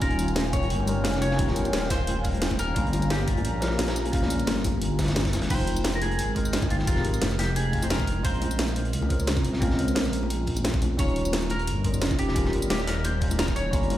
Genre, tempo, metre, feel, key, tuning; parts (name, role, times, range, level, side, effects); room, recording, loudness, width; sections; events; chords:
liquid drum and bass; 175 BPM; 4/4; swing 53% on 16ths; A4 = 440 Hz
semi-hollow electric guitar; melody; 0.0-8.9, 11.0-14.0 s; F4 to Db5; -32 LUFS; left 1 dB; wide subtle chorus, dub echo
bell-like tine electric piano; accompaniment; 0.0-14.0 s; G3 to G5; -30 LUFS; equal; phaser
airy breathy pad; sustained chords; 0.0-5.5 s; F5 to Bb5; -37 LUFS; right 1 dB; chorus
dark detuned saw bass; bass; 0.0-14.0 s; Eb1 to Db2; -28 LUFS; equal
crunchy breakbeat drum kit; drums; 0.0-14.0 s; hi-hat, snare drum; -35 LUFS; equal; high-pass filter on hats, small room ambience, high-pass filter on snare, high-pass filter on room
drum and bass drum kit; drums; 0.0-14.0 s; crash cymbal, hi-hat, snare drum, tambourine; -31 LUFS; equal; small room ambience
electronic kick drum; drums; 0.0-13.8 s; -27 LUFS; equal; small room ambience
bongos; percussion; 0.2-14.0 s; -38 LUFS; left 5 dB
light reverb; played on a big sound system in a bare room, large studio reverb; -23 LUFS; side -13 dB against mid
0.0-5.5 A section; 5.5-14.0 A section
drop 0.0-5.5, 5.5-14.0
0.0 Eb9; 2.8 Gm7b5; 5.5 Fm11; 8.2 Bbm9; 11.0 Eb9